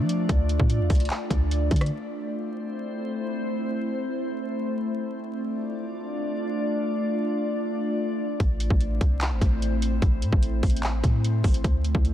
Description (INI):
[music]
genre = hip hop, trap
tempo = 148 BPM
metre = 4/4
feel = half-time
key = A minor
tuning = A4 = 441 Hz
[part]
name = glassy FM pad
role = sustained chords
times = 0.0-12.1 s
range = A3 to D5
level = -28 LUFS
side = left 1 dB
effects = ensemble chorus, built-in reverb
[part]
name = clean 808-style bass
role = bass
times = 0.0-1.9, 8.4-12.1 s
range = G#1 to F3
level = -24 LUFS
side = equal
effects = none
[part]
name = trap drum kit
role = drums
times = 0.1-1.9, 8.4-12.1 s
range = handclaps, hi-hat, kick drum, rim click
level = -23 LUFS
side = equal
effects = vintage 12-bit sampler grit
[sound]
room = digital ambience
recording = dense, heavily limited modern master, vinyl crackle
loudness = -23 LUFS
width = side -12 dB against mid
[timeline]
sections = 0.0-1.9 A section; 1.9-8.4 B section; 8.4-12.1 A section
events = none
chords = 0.0 Dm; 1.9 Am; 5.2 Dm; 8.4 Am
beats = | 0.29 0.70 1.10 1.51 | 1.91 2.32 2.73 3.13 | 3.54 3.94 4.35 4.75 | 5.16 5.56 5.97 6.37 | 6.78 7.18 7.59 8.00 | 8.40 8.81 9.21 9.62 | 10.02 10.43 10.83 11.24 | 11.64 12.05